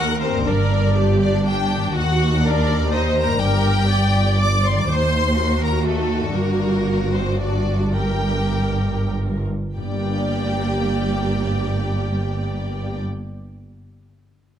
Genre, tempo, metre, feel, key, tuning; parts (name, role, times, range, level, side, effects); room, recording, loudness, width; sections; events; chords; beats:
cinematic; 95-123 BPM; 3/4; straight; G harmonic minor; A4 = 440 Hz
warm symphonic violin section; melody; 0.0-13.0 s; A4 to D6; -26 LUFS; left 4 dB
rich symphonic violin section; second line; 0.0-13.0 s; A3 to D5; -29 LUFS; equal
warm symphonic viola section; accompaniment; 0.0-13.0 s; Bb3 to D5; -26 LUFS; right 1 dB
concert harp; arpeggios; 0.0-13.7 s; G2 to D5; -31 LUFS; left 8 dB
dark symphonic cello section; bass; 0.0-13.0 s; Eb2 to G2; -23 LUFS; right 1 dB
rich symphonic double bass section; bass; 0.0-13.0 s; G1 to Eb2; -23 LUFS; right 2 dB
timpani; percussion; 9.8-13.0 s; G2; -38 LUFS; left 1 dB
moderate recital hall reverb, RT60 1.8 s; close, detailed microphones; -18 LUFS; side -10 dB against mid
0.0-9.8 A section; 9.8-13.5 B section
slowing down 5.6-9.8
0.5 Gm; 1.9 Ebm; 3.4 Gm; 4.9 Ebm; 6.4 Gm
| 0.46 0.96 1.45 | 1.94 2.43 2.93 | 3.42 3.91 4.40 | 4.89 5.38 5.88 | 6.38 6.88 7.41 | 7.98 8.56 9.15 | 9.77 10.40 11.02 | 11.65 12.28 12.90